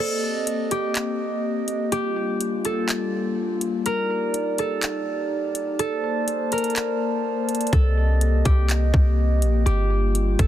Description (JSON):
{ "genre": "hip hop, atmospheric cloud-rap", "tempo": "124 BPM", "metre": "4/4", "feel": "half-time", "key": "C dorian", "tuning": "A4 = 438 Hz", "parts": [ { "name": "concert harp", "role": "melody", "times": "0.0-10.5 s", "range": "G4 to Bb4", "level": "-27 LUFS", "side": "right 1 dB", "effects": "low-pass filter, tape echo" }, { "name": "glass harmonica", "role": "sustained chords", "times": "0.0-10.5 s", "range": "G3 to A5", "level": "-26 LUFS", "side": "equal", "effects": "sidechain pumping" }, { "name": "trap drum kit", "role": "drums", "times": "0.5-10.5 s", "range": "handclaps, hi-hat, kick drum", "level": "-23 LUFS", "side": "equal", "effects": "none" }, { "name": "clean 808-style bass", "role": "bass", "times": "7.7-10.5 s", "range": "G1 to C2", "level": "-19 LUFS", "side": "equal", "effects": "none" } ], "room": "little or no reverb", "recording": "dense, heavily limited modern master", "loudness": "-20 LUFS", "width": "side -12 dB against mid", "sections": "0.0-10.5 A section", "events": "break 0.0-7.7", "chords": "0.0 Cm7; 1.9 Gm7; 3.9 Ebmaj7; 5.8 Bbmaj9; 7.7 Cm7; 9.7 Gm7" }